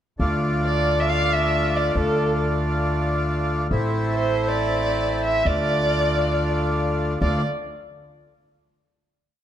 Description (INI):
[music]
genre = klezmer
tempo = 137 BPM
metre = 4/4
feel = straight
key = D minor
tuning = A4 = 438 Hz
[part]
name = accordion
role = accompaniment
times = 0.2-7.4 s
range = A3 to F4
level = -24 LUFS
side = equal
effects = none
[part]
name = upright bass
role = bass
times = 0.2-7.4 s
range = A1 to D2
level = -24 LUFS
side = equal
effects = none
[part]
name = dark violin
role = melody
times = 0.6-7.4 s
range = A4 to F5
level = -24 LUFS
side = right 1 dB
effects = none
[sound]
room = moderate recital hall reverb, RT60 1.7 s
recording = dark, warm production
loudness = -20 LUFS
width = side -10 dB against mid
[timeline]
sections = 0.2-7.2 A section; 7.2-9.0 final chord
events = none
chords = 0.2 Dm; 3.7 Am; 5.5 Dm